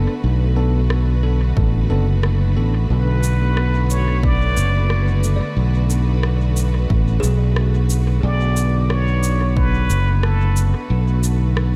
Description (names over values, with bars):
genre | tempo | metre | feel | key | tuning
ambient dub | 90 BPM | 4/4 | swing 59% on 16ths | B dorian | A4 = 440 Hz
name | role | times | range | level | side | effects
warm studio string section | sustained chords | 0.0-11.8 s | D3 to B4 | -29 LUFS | equal | none
bell-like tine electric piano | stabs | 0.0-2.7 s | B3 to A4 | -31 LUFS | equal | dub echo
fingered electric bass | bass | 0.0-11.8 s | F#1 to B1 | -19 LUFS | equal | none
electronic rim click and cabasa | drums | 0.9-11.7 s | none | -33 LUFS | equal | dub echo
electronic kick drum | drums | 1.6-9.7 s | none | -22 LUFS | equal | overdrive
trumpet with plunger mute | melody | 2.9-10.7 s | A4 to D5 | -28 LUFS | equal | dub echo
kalimba | arpeggios | 5.4-8.7 s | G#4 to D5 | -35 LUFS | equal | dub echo
room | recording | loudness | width
studio ambience | echo-heavy mix | -18 LUFS | mono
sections
0.0-11.8 A section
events
none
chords
0.0 Bm7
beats
| 0.23 0.90 1.57 2.23 | 2.90 3.57 4.23 4.90 | 5.57 6.23 6.90 7.57 | 8.23 8.90 9.57 10.23 | 10.90 11.57